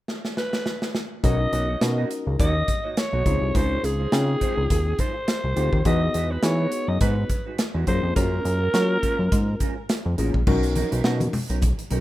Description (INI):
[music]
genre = early-eighties boogie funk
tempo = 104 BPM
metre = 4/4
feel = swing 56% on 16ths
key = B major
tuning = A4 = 440 Hz
[part]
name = modern studio drum kit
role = drums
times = 0.1-12.0 s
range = crash cymbal, hi-hat, kick drum, snare drum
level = -26 LUFS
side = equal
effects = none
[part]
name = growling alto saxophone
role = melody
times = 0.4-9.9 s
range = G#4 to D#5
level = -27 LUFS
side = equal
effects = none
[part]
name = tine electric piano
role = accompaniment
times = 1.2-12.0 s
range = A#3 to G5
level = -29 LUFS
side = moving between left 8 dB and equal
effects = auto-pan
[part]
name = mellow electric guitar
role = riff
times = 1.2-12.0 s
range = F#3 to D#5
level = -34 LUFS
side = right 7 dB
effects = analog chorus
[part]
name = fat analog bass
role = bass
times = 1.2-12.0 s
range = A1 to F#3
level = -23 LUFS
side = equal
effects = none
[part]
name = congas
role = percussion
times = 10.5-12.0 s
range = none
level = -28 LUFS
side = left 2 dB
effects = none
[sound]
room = studio ambience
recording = rough home demo mix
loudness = -20 LUFS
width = side -15 dB against mid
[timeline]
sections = 0.0-1.2 A section; 1.2-10.5 B section; 10.5-12.0 C section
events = drum fill 0.1-1.2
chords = 0.0 N.C.; 1.2 Bmaj9; 3.3 C#maj9; 5.9 Emaj9; 7.9 F#maj9; 10.5 Bmaj9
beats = 0.08 0.66 | 1.24 1.81 2.39 2.97 | 3.54 4.12 4.70 5.28 | 5.85 6.43 7.01 7.58 | 8.16 8.74 9.31 9.89 | 10.47 11.04 11.62